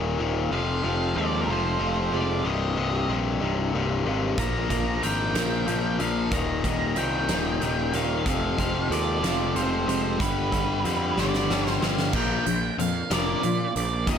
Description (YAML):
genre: quiet-loud alternative rock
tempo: 62 BPM (dotted quarters)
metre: 6/8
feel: straight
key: unclear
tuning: A4 = 440 Hz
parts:
  - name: electric guitar through a small old amp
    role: arpeggios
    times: 0.0-14.2 s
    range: C2 to Bb4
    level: -33 LUFS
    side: right 6 dB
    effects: phaser, slapback echo
  - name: biting overdriven guitar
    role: riff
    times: 0.0-14.2 s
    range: C2 to Bb3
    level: -27 LUFS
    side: left 6 dB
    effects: none
  - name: fuzz picked electric bass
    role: bass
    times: 0.0-14.2 s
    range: C1 to Bb2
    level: -29 LUFS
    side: right 1 dB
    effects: overdrive
  - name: octave-fuzz lead guitar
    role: melody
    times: 0.5-14.2 s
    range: Bb4 to Bb5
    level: -30 LUFS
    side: right 4 dB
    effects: distortion
  - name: huge arena drum kit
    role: drums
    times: 4.4-14.2 s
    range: crash cymbal, hi-hat, kick drum, snare drum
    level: -30 LUFS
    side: right 1 dB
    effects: none
room: light reverb, small room ambience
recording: none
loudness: -23 LUFS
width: side -8 dB against mid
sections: 0.0-12.1 A section; 12.1-14.2 B section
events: drum fill 11.2-12.1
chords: 0.0 Ebsus2; 0.5 Fm; 2.4 Cm7; 4.4 Bb; 6.3 Ebadd9; 8.3 Fm; 10.2 G; 12.1 Bb